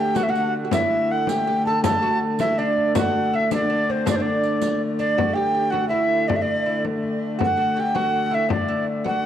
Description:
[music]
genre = medieval dance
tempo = 108 BPM (dotted quarters)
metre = 6/8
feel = straight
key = D major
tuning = A4 = 444 Hz
[part]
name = mellow tenor recorder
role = melody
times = 0.0-9.3 s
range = C5 to A5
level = -22 LUFS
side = equal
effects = cassette tape, tape echo
[part]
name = lute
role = second line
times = 0.0-9.3 s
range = C4 to A4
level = -28 LUFS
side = right 7 dB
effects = none
[part]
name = dark hurdy-gurdy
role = drone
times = 0.0-9.3 s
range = D3 to A3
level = -26 LUFS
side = left 2 dB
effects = none
[part]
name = frame drum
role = percussion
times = 0.2-9.2 s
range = none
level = -28 LUFS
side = left 5 dB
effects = none
[part]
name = riq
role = percussion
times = 0.2-5.1 s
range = none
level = -32 LUFS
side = right 8 dB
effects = none
[sound]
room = wet lush hall reverb, RT60 2.6 s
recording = home recording on cassette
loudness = -19 LUFS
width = side -10 dB against mid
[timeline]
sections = 0.0-5.2 A section; 5.2-9.3 B section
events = none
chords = none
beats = 0.17 | 0.73 1.28 | 1.84 2.40 | 2.96 3.51 | 4.07 4.62 | 5.18 5.74 | 6.29 6.84 | 7.40 7.95 | 8.51 9.06

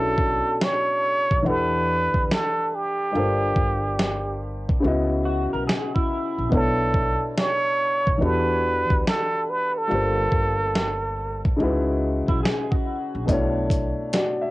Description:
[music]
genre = lo-fi hip hop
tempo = 71 BPM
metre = 4/4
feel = swing 66% on 16ths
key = B minor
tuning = A4 = 445 Hz
[part]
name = trumpet with plunger mute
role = melody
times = 0.0-11.5 s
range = G4 to C#5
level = -23 LUFS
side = right 2 dB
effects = low-pass filter, cassette tape
[part]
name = dark upright piano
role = accompaniment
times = 0.0-14.5 s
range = B2 to F#5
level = -26 LUFS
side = left 2 dB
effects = low-pass filter, cassette tape
[part]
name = upright bass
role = bass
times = 0.0-13.9 s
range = G1 to E2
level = -28 LUFS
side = equal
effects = none
[part]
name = dusty soul sampler-style drum kit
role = drums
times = 0.2-14.4 s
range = hi-hat, kick drum, snare drum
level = -24 LUFS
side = equal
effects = cassette tape
[part]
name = electric guitar through a small old amp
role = second line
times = 5.3-6.5, 12.3-13.2 s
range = E4 to A#4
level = -30 LUFS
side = left 1 dB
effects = analog chorus, low-pass filter, cassette tape, analog delay
[sound]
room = light reverb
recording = home recording on cassette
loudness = -20 LUFS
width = side -18 dB against mid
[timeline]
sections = 0.0-14.5 A section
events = break 0.0-13.3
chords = 0.0 Bm11; 1.4 Em11; 3.1 Gm11; 4.8 C#m11; 6.5 Bm11; 8.2 Em11; 9.9 Gm11; 11.6 C#m11; 13.3 Bm11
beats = 0.60 1.45 2.29 | 3.14 3.98 4.83 5.67 | 6.52 7.36 8.21 9.05 | 9.90 10.74 11.59 12.43 | 13.28 14.12

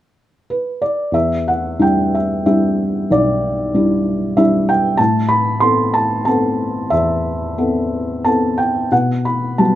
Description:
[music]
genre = classical, lyrical solo piano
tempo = 88-99 BPM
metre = 3/4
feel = rubato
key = unclear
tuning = A4 = 440 Hz
[part]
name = felt-muted upright piano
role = solo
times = 0.5-9.8 s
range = B1 to C6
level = -14 LUFS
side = equal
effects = none
[sound]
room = light reverb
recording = close, detailed microphones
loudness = -14 LUFS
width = side -13 dB against mid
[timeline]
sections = 0.0-1.1 A section; 1.1-9.8 B section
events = none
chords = 0.0 N.C.; 1.1 Em7; 5.0 Amadd9; 8.9 Gmaj7/B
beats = 0.48 | 1.13 1.81 2.47 | 3.11 3.75 4.37 | 4.99 5.62 6.27 | 6.92 7.58 8.25 | 8.92 9.59

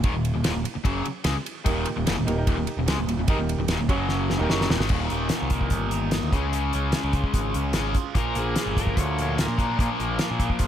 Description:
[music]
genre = classic rock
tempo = 148 BPM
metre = 4/4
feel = straight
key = unclear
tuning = A4 = 441 Hz
[part]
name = cranked stack guitar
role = riff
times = 0.0-10.7 s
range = Eb2 to Db4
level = -29 LUFS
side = left 10 dB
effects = overdrive
[part]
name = overdriven electric guitar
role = riff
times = 0.0-10.7 s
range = Eb2 to Ab4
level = -30 LUFS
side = right 10 dB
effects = phaser
[part]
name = growling picked electric bass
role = bass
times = 0.0-10.7 s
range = Eb1 to Bb2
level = -28 LUFS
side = equal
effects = overdrive
[part]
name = damped 70s drum kit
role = drums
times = 0.0-10.7 s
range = crash cymbal, hi-hat, kick drum, ride cymbal, snare drum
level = -26 LUFS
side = equal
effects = none
[part]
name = bright upright piano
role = accompaniment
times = 1.6-4.8 s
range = Db4 to Db5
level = -32 LUFS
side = right 4 dB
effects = none
[part]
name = crunchy overdriven guitar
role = second line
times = 8.2-9.8 s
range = Ab4 to Db5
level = -33 LUFS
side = left 4 dB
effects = phaser
[sound]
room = light reverb, small room reverb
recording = none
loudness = -22 LUFS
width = side -10 dB against mid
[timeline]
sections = 0.0-4.9 A section; 4.9-10.7 B section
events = drum fill 4.1-4.9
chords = 0.0 Eb; 3.9 Gb5; 4.4 Eb; 4.9 Eb5; 6.3 Db; 8.2 Bb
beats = | 0.04 0.45 0.85 1.25 | 1.66 2.06 2.47 2.87 | 3.28 3.68 4.09 4.49 | 4.90 5.30 5.71 6.12 | 6.53 6.93 7.34 7.75 | 8.15 8.56 8.97 9.37 | 9.78 10.19 10.59

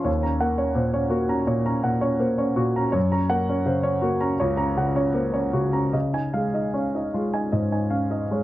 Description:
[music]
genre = neoclassical minimalist piano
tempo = 75-84 BPM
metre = 4/4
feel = rubato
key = unclear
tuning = A4 = 440 Hz
[part]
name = warm concert grand piano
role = solo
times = 0.0-8.4 s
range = Db2 to C6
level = -21 LUFS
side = equal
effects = none
[sound]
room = wet small room ambience, RT60 0.5 s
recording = cassette tape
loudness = -21 LUFS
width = side -15 dB against mid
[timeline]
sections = 0.0-8.4 A section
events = none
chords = 0.1 Ebm7 (rootless); 3.0 Gb; 5.9 Dbadd9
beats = | 0.07 0.80 1.52 2.24 | 2.96 3.69 4.42 5.17 | 5.95 6.74 7.53 8.32

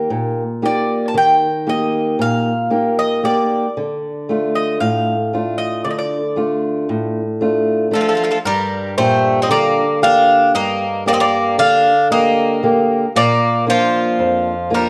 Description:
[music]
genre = greek folk, Greek bouzouki band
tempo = 115 BPM (eighths)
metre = 9/8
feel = straight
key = unclear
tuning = A4 = 440 Hz
[part]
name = fingerpicked old ladder-braced acoustic guitar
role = accompaniment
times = 0.0-14.9 s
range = F2 to G4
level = -20 LUFS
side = equal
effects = none
[part]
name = Greek bouzouki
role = melody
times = 0.7-14.9 s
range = A4 to A5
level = -20 LUFS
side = equal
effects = none
[part]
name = Greek bouzouki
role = second line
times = 8.0-14.9 s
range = F3 to D4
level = -22 LUFS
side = equal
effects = none
[sound]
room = wet echo chamber reverb, RT60 1.4 s, small room ambience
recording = none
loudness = -16 LUFS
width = mono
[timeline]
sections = 0.0-8.5 A section; 8.5-14.9 B section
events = none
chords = 0.0 Eb; 3.8 Dm; 8.5 Gm; 13.1 Bb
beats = 0.10 0.62 1.14 1.67 2.19 2.71 3.23 | 3.75 4.28 4.80 5.32 5.84 6.36 6.88 7.41 7.93 | 8.45 8.97 9.49 10.02 10.54 11.06 11.58 12.11 12.63 | 13.15 13.67 14.19 14.72

